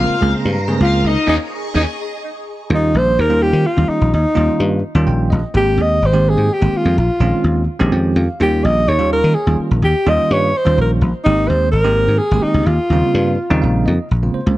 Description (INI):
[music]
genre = jazz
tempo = 84 BPM (dotted quarters)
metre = 6/8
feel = straight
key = unclear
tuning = A4 = 440 Hz
[part]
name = breathy alto saxophone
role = melody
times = 0.0-13.9 s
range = Eb4 to Eb5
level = -17 LUFS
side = equal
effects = none
[part]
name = overdriven electric guitar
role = second line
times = 0.0-1.8 s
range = Db5 to Ab5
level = -24 LUFS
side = left 3 dB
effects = none
[part]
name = bell-like tine electric piano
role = accompaniment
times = 0.0-14.6 s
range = Db3 to G5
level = -20 LUFS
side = right 2 dB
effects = fast stereo tremolo
[part]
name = phased string machine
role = sustained chords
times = 0.0-2.7 s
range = Ab4 to Db6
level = -27 LUFS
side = equal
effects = ensemble chorus, phaser
[part]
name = dry thumbed slap bass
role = bass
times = 0.0-14.6 s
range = Ab1 to Eb3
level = -16 LUFS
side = equal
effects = none
[sound]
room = light reverb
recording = dark, warm production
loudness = -13 LUFS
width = side -16 dB against mid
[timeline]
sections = 0.0-2.7 A section; 2.7-14.1 B section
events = band accent 1.3-2.7; tine electric piano fill 4.8-5.6, 7.7-8.4, 13.4-14.1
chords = 0.0 Bbm9; 1.3 Eb7sus4; 2.7 Eb7; 5.6 Abmaj7; 7.0 Bbm11; 8.4 Eb7; 11.2 Abmaj7; 12.7 Eb13